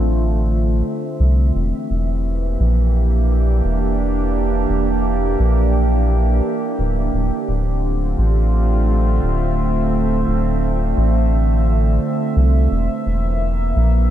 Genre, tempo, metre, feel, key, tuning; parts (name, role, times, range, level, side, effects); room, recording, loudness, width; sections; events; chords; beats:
ambient dub; 86 BPM; 4/4; swing 57% on 16ths; D minor; A4 = 440 Hz
warbly tape-like pad; sustained chords; 0.0-14.1 s; D3 to E5; -20 LUFS; right 2 dB; chorus, built-in reverb
round analog bass; bass; 0.0-14.1 s; D1 to C2; -17 LUFS; equal
light reverb, digital ambience; -16 LUFS; side -11 dB against mid
0.0-14.1 A section
0.0 Dm7; 1.6 Em7b5; 7.1 Dm7; 12.7 E7(b5, no3)
0.16 0.85 | 1.55 2.25 2.95 3.65 | 4.34 5.04 5.74 6.44 | 7.13 7.83 8.53 9.23 | 9.93 10.62 11.32 12.02 | 12.71 13.41